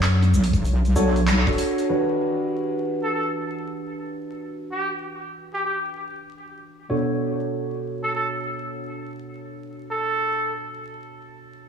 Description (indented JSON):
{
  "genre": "glitch hop",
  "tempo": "96 BPM",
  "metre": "4/4",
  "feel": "swing 64% on 16ths",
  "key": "E dorian",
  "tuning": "A4 = 440 Hz",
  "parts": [
    { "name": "drum and bass drum kit", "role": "drums", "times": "0.0-2.1 s", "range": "crash cymbal, handclaps, hi-hat, snare drum", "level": "-28 LUFS", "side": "equal", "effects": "overdrive, low-pass filter on hats, low-pass filter on snare, low-pass filter on cymbals" },
    { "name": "cabasa", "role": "percussion", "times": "0.0-1.9 s", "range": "none", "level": "-40 LUFS", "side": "right 1 dB", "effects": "none" },
    { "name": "wobble bass", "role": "bass", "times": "0.3-1.4 s", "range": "B1", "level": "-18 LUFS", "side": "equal", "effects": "chorus, tube saturation" },
    { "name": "electronic kick drum", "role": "drums", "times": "0.5-1.6 s", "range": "none", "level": "-24 LUFS", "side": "equal", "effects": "none" },
    { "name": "tine electric piano", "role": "stabs", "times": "1.0-11.7 s", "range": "B2 to C#5", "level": "-27 LUFS", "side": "right 1 dB", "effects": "lush chorus, sidechain pumping, low-pass filter, tape echo" },
    { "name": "warm trumpet", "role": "melody", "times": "3.0-10.5 s", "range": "G4 to A4", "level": "-27 LUFS", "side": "right 1 dB", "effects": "tape echo" }
  ],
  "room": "moderate lush hall reverb, RT60 1.8 s",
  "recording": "dreamy mix soaked in reverb, vinyl crackle, small room ambience",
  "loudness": "-22 LUFS",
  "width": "side -7 dB against mid",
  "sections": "0.0-1.9 A section; 1.9-11.7 B section",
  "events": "band accent 1.3-1.6; filter sweep on tine electric piano 1.9-11.7",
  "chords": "0.0 Bm9; 1.9 Em7; 6.9 Bm9"
}